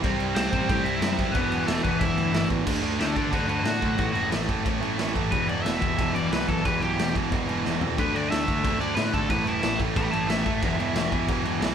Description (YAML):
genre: punk rock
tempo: 181 BPM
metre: 4/4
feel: straight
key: unclear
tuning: A4 = 441 Hz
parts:
  - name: crunchy overdriven guitar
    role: riff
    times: 0.0-11.7 s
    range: E2 to D4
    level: -30 LUFS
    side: left 8 dB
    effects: none
  - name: fuzz guitar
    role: riff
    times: 0.0-11.7 s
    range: E2 to D4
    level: -33 LUFS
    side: left 2 dB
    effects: distortion
  - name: tight distorted guitar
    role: riff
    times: 0.0-11.7 s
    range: E2 to D4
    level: -29 LUFS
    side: right 8 dB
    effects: distortion
  - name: fuzz picked electric bass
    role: bass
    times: 0.0-11.7 s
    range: E1 to D3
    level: -32 LUFS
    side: equal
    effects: overdrive
  - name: raw garage drum kit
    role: drums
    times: 0.0-11.7 s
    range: crash cymbal, kick drum, snare drum, toms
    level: -28 LUFS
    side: equal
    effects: none
  - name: biting overdriven guitar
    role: melody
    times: 0.4-11.3 s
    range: A3 to B5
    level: -29 LUFS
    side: equal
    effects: none
room: light reverb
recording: band playing live in one room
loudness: -22 LUFS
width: side -8 dB against mid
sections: 0.0-2.7 A section; 2.7-11.7 B section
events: overdriven electric guitar solo 2.7-11.7; drum fill 7.6-8.0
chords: 0.0 C; 1.4 E5; 2.7 D; 4.0 A5; 5.3 E5; 8.0 D5; 9.3 A5; 10.6 E5